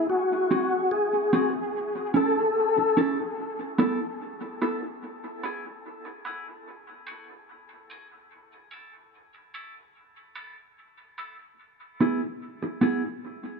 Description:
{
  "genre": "reggae",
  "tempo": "73 BPM",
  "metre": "4/4",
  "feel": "straight",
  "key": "unclear",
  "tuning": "A4 = 440 Hz",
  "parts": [
    { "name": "tonewheel organ", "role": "melody", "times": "0.0-3.0 s", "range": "F#4 to A4", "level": "-26 LUFS", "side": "left 2 dB", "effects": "overdrive, chorus vibrato, slow rotary speaker, dub echo" },
    { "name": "mellow electric guitar", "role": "accompaniment", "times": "0.5-13.0 s", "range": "B3 to A4", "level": "-28 LUFS", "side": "right 2 dB", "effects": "high-pass filter, dub echo" }
  ],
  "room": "moderate echo chamber reverb, RT60 1.9 s",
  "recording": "none",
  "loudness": "-24 LUFS",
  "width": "side -4 dB against mid",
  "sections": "0.0-13.6 A section",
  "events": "break 1.7-13.6; filter sweep on clean electric guitar 1.7-11.6",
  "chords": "0.1 G#7; 1.7 A/C#; 3.4 B7sus4; 5.0 E/B; 6.7 G#7; 8.3 C#m; 10.0 B7sus4; 11.6 E/B"
}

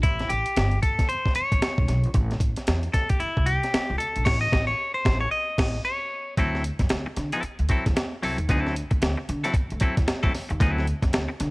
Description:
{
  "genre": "funk",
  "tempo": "114 BPM",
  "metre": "4/4",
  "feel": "swing 60% on 16ths",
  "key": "unclear",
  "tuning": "A4 = 440 Hz",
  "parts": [
    { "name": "clean electric guitar", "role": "accompaniment", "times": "0.0-11.3 s", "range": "F#3 to D#5", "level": "-27 LUFS", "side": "left 1 dB", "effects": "cassette tape" },
    { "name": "upright bass", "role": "bass", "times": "0.0-11.5 s", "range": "E1 to D3", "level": "-27 LUFS", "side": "equal", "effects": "none" },
    { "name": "breakbeat sampler-style drum kit", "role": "drums", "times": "0.0-11.5 s", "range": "crash cymbal, hi-hat, kick drum, snare drum", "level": "-24 LUFS", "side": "equal", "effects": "cassette tape" }
  ],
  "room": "little or no reverb",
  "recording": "home recording on cassette",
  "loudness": "-22 LUFS",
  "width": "side -26 dB against mid",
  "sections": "0.0-6.4 A section; 6.4-11.5 B section",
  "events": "clean electric guitar solo 0.0-6.4; band accent 4.3-6.4",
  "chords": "0.0 A7; 6.4 D9"
}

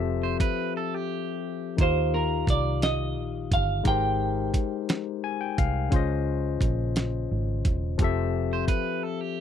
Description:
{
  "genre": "slow six-eight R&B",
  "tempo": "58 BPM (dotted quarters)",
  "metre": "6/8",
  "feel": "straight",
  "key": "unclear",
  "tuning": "A4 = 440 Hz",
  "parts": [
    { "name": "barky tine electric piano", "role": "accompaniment", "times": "0.0-9.4 s", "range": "Db3 to Ab5", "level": "-29 LUFS", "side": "left 11 dB", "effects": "overdrive" },
    { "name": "vintage muted fingered electric bass", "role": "bass", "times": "0.0-8.7 s", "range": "Fb1 to Eb2", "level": "-28 LUFS", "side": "right 1 dB", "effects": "none" },
    { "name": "electric guitar at the edge of break-up", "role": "second line", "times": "0.2-1.8, 8.5-9.4 s", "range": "G4 to C5", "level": "-32 LUFS", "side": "right 10 dB", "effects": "none" },
    { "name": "dusty soul sampler-style drum kit", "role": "drums", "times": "0.4-8.8 s", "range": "hi-hat, kick drum, snare drum", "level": "-25 LUFS", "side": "right 1 dB", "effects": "none" },
    { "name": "semi-hollow electric guitar", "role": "melody", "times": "1.8-5.5 s", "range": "Bb4 to G5", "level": "-28 LUFS", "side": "right 4 dB", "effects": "spring reverb, slapback echo" }
  ],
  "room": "little or no reverb",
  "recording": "dry, close 1970s-style studio recording",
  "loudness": "-24 LUFS",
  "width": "side -9 dB against mid",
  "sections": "0.0-9.4 A section",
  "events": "break 0.7-1.8, 9.0-9.4; tine electric piano fill 4.9-5.9",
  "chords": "0.0 Fmaj9; 1.8 Ebadd9; 3.9 Abmaj9; 5.9 Dbmaj9; 8.0 Fmaj9"
}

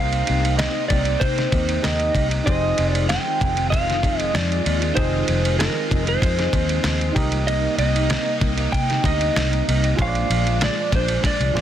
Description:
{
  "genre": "indie pop, bedroom pop",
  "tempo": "96 BPM",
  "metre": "4/4",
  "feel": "straight",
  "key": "C minor",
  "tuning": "A4 = 439 Hz",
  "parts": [
    { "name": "electric slide guitar", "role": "melody", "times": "0.0-11.6 s", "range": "Bb4 to G5", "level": "-24 LUFS", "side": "right 2 dB", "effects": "wide subtle chorus, ping-pong delay" },
    { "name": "mellow electric guitar", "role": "accompaniment", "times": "0.0-11.6 s", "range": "Bb2 to Ab4", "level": "-28 LUFS", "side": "left 4 dB", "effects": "ensemble chorus, warbly pitch drift" },
    { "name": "soft electric-piano-like synth keys", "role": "accompaniment", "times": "0.0-11.6 s", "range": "Eb4 to Eb5", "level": "-31 LUFS", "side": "right 4 dB", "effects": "chorus, cassette tape" },
    { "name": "string machine, violas", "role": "sustained chords", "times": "0.0-11.6 s", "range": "Bb2 to F4", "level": "-29 LUFS", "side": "equal", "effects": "ensemble chorus" },
    { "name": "vintage muted fingered electric bass", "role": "bass", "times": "0.0-11.6 s", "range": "F1 to C3", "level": "-23 LUFS", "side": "equal", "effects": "none" },
    { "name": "dusty soul sampler-style drum kit", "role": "drums", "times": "0.1-11.6 s", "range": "kick drum, ride cymbal, snare drum", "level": "-24 LUFS", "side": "equal", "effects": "none" }
  ],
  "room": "light reverb",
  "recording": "dense, heavily limited modern master",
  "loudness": "-18 LUFS",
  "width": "side -10 dB against mid",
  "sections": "0.0-11.6 A section",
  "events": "drum fill 11.2-11.6",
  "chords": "0.0 Cm7; 2.5 Fm7; 7.2 Cm7; 10.0 Bb7"
}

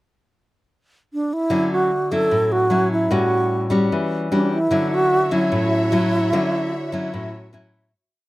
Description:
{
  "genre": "bossa nova",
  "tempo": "149 BPM",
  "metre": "4/4",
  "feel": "straight",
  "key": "D major",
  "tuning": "A4 = 439 Hz",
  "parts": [
    { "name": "alto flute", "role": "melody", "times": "1.1-7.5 s", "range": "D4 to A4", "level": "-19 LUFS", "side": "right 1 dB", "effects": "none" },
    { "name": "nylon-string guitar", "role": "accompaniment", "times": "1.5-7.9 s", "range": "A2 to F#4", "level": "-21 LUFS", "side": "left 1 dB", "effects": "none" },
    { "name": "warm symphonic string section", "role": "sustained chords", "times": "4.7-7.9 s", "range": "F#4 to E5", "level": "-29 LUFS", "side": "left 1 dB", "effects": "none" }
  ],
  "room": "light reverb",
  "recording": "recorded outdoors, with no room sound",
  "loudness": "-17 LUFS",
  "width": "side -18 dB against mid",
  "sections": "0.0-1.5 pickup bar; 1.5-7.9 A section",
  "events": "fade-out 6.3-7.9",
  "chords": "0.0 N.C.; 1.5 Dmaj9; 3.1 A6; 4.7 Dmaj9"
}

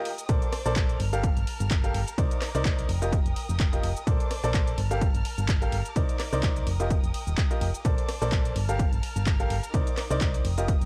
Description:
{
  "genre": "piano house",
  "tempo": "127 BPM",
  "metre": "4/4",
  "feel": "swing 56% on 16ths",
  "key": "Bb major",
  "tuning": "A4 = 442 Hz",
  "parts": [
    { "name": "rich studio violin section", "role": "sustained chords", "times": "0.0-10.9 s", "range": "Eb4 to F6", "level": "-42 LUFS", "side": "equal", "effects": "sidechain pumping" },
    { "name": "bright upright piano", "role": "riff", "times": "0.0-10.7 s", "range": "Eb4 to F5", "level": "-34 LUFS", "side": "equal", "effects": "sidechain pumping, tape echo" },
    { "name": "punchy analog drum machine", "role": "drums", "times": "0.1-10.9 s", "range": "cabasa, handclaps, hi-hat, ride cymbal, rim click", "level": "-38 LUFS", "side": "equal", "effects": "none" },
    { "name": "solid FM bass", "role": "bass", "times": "0.3-10.9 s", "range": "Eb1 to C2", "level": "-31 LUFS", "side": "equal", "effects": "sidechain pumping" },
    { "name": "electronic kick drum", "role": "drums", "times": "0.3-10.8 s", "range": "none", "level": "-29 LUFS", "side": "equal", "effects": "none" }
  ],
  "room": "digital ambience",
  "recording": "dark, warm production",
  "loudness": "-26 LUFS",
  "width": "mono",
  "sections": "0.0-10.9 A section",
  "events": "break 0.0",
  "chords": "0.3 Bbmaj9; 1.0 Gm9; 2.2 Cm9; 2.9 F9sus4; 4.1 Bbmaj9; 4.8 Gm9; 6.0 Cm9; 6.7 F9sus4; 7.8 Bbmaj9; 8.6 Gm9; 9.7 Cm9"
}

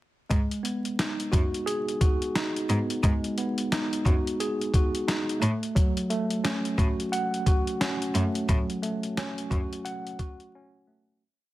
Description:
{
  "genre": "hip hop, boom-bap hip-hop",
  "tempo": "88 BPM",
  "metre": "4/4",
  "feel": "swing 60% on 16ths",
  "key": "F# dorian",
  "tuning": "A4 = 440 Hz",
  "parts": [
    { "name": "mellow tine electric piano", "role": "accompaniment", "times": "0.3-11.2 s", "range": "F#3 to F#5", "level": "-28 LUFS", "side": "right 1 dB", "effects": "medium stereo tremolo, cassette tape, high-pass filter, low-pass filter" },
    { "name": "bright cello", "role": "bass", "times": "0.3-9.6 s", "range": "F#2 to A2", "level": "-28 LUFS", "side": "equal", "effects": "none" },
    { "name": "boom bap sampler-style drum kit", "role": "drums", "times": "0.3-10.5 s", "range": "hi-hat, kick drum, snare drum", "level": "-26 LUFS", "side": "equal", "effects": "none" }
  ],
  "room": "digital ambience",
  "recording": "dense, heavily limited modern master, vinyl crackle",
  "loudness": "-24 LUFS",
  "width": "side -16 dB against mid",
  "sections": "0.3-11.2 hook",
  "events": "fade-out 8.5-11.2; break 10.5-11.2",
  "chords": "0.3 G#m7; 5.4 F#m"
}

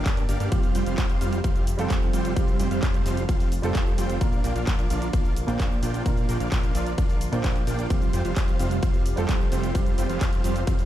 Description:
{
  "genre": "EDM, festival progressive house",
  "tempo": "130 BPM",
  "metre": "4/4",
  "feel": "straight",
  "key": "unclear",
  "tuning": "A4 = 440 Hz",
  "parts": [
    { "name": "lush unison pad", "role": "sustained chords", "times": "0.0-10.9 s", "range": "C3 to G4", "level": "-35 LUFS", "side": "right 1 dB", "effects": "chorus, phaser, sidechain pumping" },
    { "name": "big supersaw lead", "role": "riff", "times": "0.0-10.9 s", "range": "G3 to G5", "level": "-30 LUFS", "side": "right 2 dB", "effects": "cassette tape, sidechain pumping, ping-pong delay" },
    { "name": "fat analog bass", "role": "bass", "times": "0.0-10.9 s", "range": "F1 to G2", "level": "-28 LUFS", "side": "equal", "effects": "sidechain pumping" },
    { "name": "big-room dance drum kit", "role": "drums", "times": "0.1-10.9 s", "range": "cabasa, handclaps, hi-hat, ride cymbal", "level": "-36 LUFS", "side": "equal", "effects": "none" },
    { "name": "electronic kick drum", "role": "drums", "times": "0.1-10.8 s", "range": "none", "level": "-24 LUFS", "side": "equal", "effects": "overdrive" },
    { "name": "dark grand piano", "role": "accompaniment", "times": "0.5-10.9 s", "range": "Bb2 to C5", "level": "-33 LUFS", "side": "right 4 dB", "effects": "sidechain pumping, ping-pong delay" }
  ],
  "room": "little or no reverb",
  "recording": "played on a big sound system in a bare room, large studio reverb",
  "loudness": "-22 LUFS",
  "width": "side -12 dB against mid",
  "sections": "0.0-10.9 A section",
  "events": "none",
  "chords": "0.0 Gm; 0.5 Fsus2; 4.2 Bb; 7.9 Fsus2"
}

